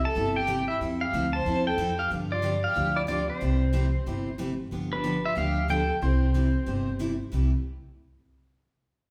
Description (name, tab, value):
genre	country, western swing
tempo	184 BPM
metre	4/4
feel	swing 64% on 8ths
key	C major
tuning	A4 = 439 Hz
part	pedal steel guitar	melody	0.0-7.0 s	B4 to A5	-32 LUFS	equal	none
part	warm fiddle	second line	0.0-7.0 s	C4 to C5	-36 LUFS	equal	none
part	upright bass	bass	0.0-7.5 s	G1 to G2	-31 LUFS	equal	none
part	picked steel-string acoustic guitar	accompaniment	0.2-7.5 s	C3 to A4	-33 LUFS	equal	none
room	wet large studio reverb, RT60 1.3 s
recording	band playing live in one room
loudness	-27 LUFS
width	mono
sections	0.0-4.7 A section; 4.7-7.3 B section; 7.3-8.6 C section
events	none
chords	0.0 C6; 0.8 Fmaj9; 2.1 G7; 3.4 C6; 4.7 G9; 6.0 C6